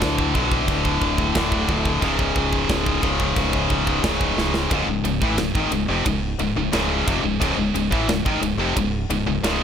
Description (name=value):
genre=heavy metal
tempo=89 BPM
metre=4/4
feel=straight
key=unclear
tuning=A4 = 437 Hz
part: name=heavy high-gain guitar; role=riff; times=0.0-9.6 s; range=C#2 to E3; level=-24 LUFS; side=right 12 dB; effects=distortion
part: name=tight distorted guitar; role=riff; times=0.0-9.6 s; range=C#2 to E3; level=-24 LUFS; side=left 10 dB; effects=distortion
part: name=growling fingered electric bass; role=bass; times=0.0-9.6 s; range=C#1 to D2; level=-26 LUFS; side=right 1 dB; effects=overdrive
part: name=tight metal drum kit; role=drums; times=0.0-9.6 s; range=china cymbal, kick drum, ride cymbal, snare drum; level=-26 LUFS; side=equal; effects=none
room=small room ambience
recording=none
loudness=-19 LUFS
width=side -8 dB against mid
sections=0.0-4.7 A section; 4.7-9.6 B section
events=drum fill 4.4-4.7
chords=0.0 D5; 2.0 C#5; 4.7 C#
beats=0.02 0.69 1.36 | 2.03 2.70 3.37 4.05 | 4.72 5.39 6.07 6.74 | 7.41 8.09 8.76 9.44